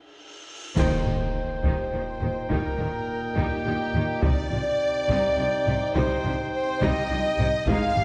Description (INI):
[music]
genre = cinematic, epic orchestral film score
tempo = 70 BPM (dotted quarters)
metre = 6/8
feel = straight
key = Eb major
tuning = A4 = 440 Hz
[part]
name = cymbal swell and impact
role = sound effects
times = 0.2-2.5 s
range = none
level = -39 LUFS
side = equal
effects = none
[part]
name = rich symphonic violin section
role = melody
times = 0.8-8.0 s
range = G4 to F5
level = -38 LUFS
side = equal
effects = none
[part]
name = silver concert flute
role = second line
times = 0.8-8.0 s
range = G4 to F5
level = -38 LUFS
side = equal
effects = none
[part]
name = warm symphonic violin section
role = second line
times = 0.8-8.0 s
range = G4 to F5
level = -38 LUFS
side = equal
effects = none
[part]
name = clear studio viola section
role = accompaniment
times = 0.8-8.0 s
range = F3 to Eb4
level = -37 LUFS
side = equal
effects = none
[part]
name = clear trombone section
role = sustained chords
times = 0.8-8.0 s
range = Bb2 to Eb4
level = -36 LUFS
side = equal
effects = none
[part]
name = warm French horn section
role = sustained chords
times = 0.8-8.0 s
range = G4 to F5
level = -32 LUFS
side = equal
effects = none
[part]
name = clear trumpet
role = stabs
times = 0.8-8.0 s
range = G5 to Ab5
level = -36 LUFS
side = equal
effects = none
[part]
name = rich symphonic cello section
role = bass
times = 0.8-8.0 s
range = Ab2 to Eb3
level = -36 LUFS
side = equal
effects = none
[part]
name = rich symphonic double bass section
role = bass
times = 0.8-8.0 s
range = Ab1 to Eb2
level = -33 LUFS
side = equal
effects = none
[part]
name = taiko ensemble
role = drums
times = 0.8-8.0 s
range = none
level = -31 LUFS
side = equal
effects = none
[part]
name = clash cymbals and concert bass drum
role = percussion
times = 0.8-1.9 s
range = none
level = -38 LUFS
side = equal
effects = none
[part]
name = timpani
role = percussion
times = 0.8-1.6 s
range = Eb3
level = -38 LUFS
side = equal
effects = none
[sound]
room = wet scoring stage reverb, RT60 2.0 s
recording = dark, warm production, nothing above 10.6 kHz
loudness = -25 LUFS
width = mono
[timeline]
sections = 0.8-8.0 A section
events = break 0.0-0.8; drum fill 0.0-0.8; cymbal swell 0.2-0.8; band accent 0.8-1.3; impact 0.8-2.5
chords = 0.0 N.C.; 0.8 Eb; 4.2 Cm